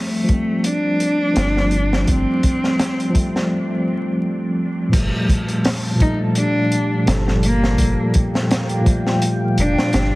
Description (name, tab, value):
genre	trip hop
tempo	84 BPM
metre	4/4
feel	swing 55% on 16ths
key	G minor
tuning	A4 = 440 Hz
part	warm cello	melody	0.0-10.2 s	A3 to Eb4	-22 LUFS	equal	vintage 12-bit sampler grit, dub echo
part	mellow tine electric piano	accompaniment	0.0-10.2 s	Bb2 to A4	-20 LUFS	equal	tremolo, tape echo
part	crunchy breakbeat drum kit	drums	0.3-10.1 s	crash cymbal, hi-hat, kick drum, snare drum	-20 LUFS	equal	none
part	round analog bass	bass	1.4-10.1 s	F1 to G1	-20 LUFS	equal	none
part	dark analog pad	sustained chords	5.6-10.2 s	G4 to A5	-30 LUFS	equal	chorus, phaser
room	light reverb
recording	heavily compressed radio sound, multiband compression, vinyl crackle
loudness	-16 LUFS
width	side -20 dB against mid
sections	0.0-4.9 A section; 4.9-10.2 B section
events	break 3.5-4.9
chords	0.0 Fadd9/G; 4.9 Gm9